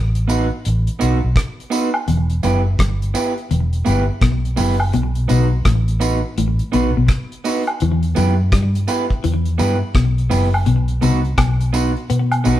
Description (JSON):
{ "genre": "roots reggae", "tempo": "84 BPM", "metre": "4/4", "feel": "swing 63% on 16ths", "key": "E harmonic minor", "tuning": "A4 = 441 Hz", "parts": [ { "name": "vintage muted fingered electric bass", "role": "bass", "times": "0.0-12.6 s", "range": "E1 to B2", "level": "-18 LUFS", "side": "equal", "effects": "none" }, { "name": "damped 70s drum kit", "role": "drums", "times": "0.2-12.6 s", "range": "hi-hat, kick drum, rim click", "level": "-20 LUFS", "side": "equal", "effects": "none" }, { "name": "electric guitar through a small old amp", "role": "accompaniment", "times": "0.3-12.6 s", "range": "B3 to B4", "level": "-21 LUFS", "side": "right 3 dB", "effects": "none" }, { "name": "tambourine and woodblock", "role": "percussion", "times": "0.3-12.6 s", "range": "none", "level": "-26 LUFS", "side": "right 1 dB", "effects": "none" }, { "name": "semi-hollow electric guitar", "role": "riff", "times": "2.1-12.6 s", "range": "E2 to B3", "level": "-21 LUFS", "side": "left 4 dB", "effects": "slapback echo" } ], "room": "moderate stone room reverb, RT60 1.2 s", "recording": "band playing live in one room", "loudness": "-15 LUFS", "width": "side -13 dB against mid", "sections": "0.0-12.6 A section", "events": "none", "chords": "0.0 B; 2.1 Em; 4.9 B; 7.8 Em; 10.7 B" }